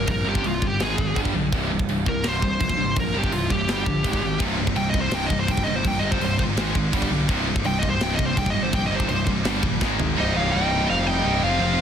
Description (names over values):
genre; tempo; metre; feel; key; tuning
heavy metal; 167 BPM; 4/4; straight; C minor; A4 = 440 Hz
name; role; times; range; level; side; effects
high-gain lead guitar; melody; 0.0-11.8 s; F4 to G5; -26 LUFS; equal; distortion, digital delay
high-gain distorted guitar; riff; 0.0-11.8 s; C2 to F4; -28 LUFS; right 11 dB; distortion
scooped high-gain guitar; riff; 0.0-11.8 s; C2 to Ab3; -28 LUFS; left 10 dB; distortion
fuzz picked electric bass; bass; 0.0-11.8 s; C1 to C2; -27 LUFS; equal; overdrive
tight metal drum kit; drums; 0.1-10.1 s; crash cymbal, kick drum, snare drum, toms; -27 LUFS; equal; soft clipping on kick
chamber organ, soft reed; sustained chords; 4.4-10.2 s; C3 to Ab5; -38 LUFS; left 2 dB; none
heavy high-gain guitar; riff; 4.4-11.8 s; C2 to F4; -30 LUFS; left 2 dB; distortion
dark smooth lead guitar; second line; 10.2-11.8 s; C5 to Eb5; -32 LUFS; right 6 dB; overdrive
room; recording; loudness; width
little or no reverb; dense, heavily limited modern master; -20 LUFS; side -8 dB against mid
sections
0.0-10.2 A section; 10.2-11.8 B section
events
lead electric guitar solo 0.0-10.2; drum fill 9.8-10.2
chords
0.0 C5; 0.8 Ab5; 1.2 G5; 1.5 C5; 3.7 G5; 4.1 Ab5; 4.4 Cm; 6.6 Ab5; 6.9 G5; 7.3 Cm; 9.5 G5; 9.8 Ab5; 10.2 Cm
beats
| 0.09 0.45 0.81 1.17 | 1.53 1.89 2.25 2.61 | 2.97 3.33 3.69 4.05 | 4.41 4.77 5.13 5.49 | 5.85 6.21 6.58 6.93 | 7.29 7.66 8.02 8.38 | 8.74 9.10 9.46 9.81 | 10.18 10.53 10.89 11.25 | 11.61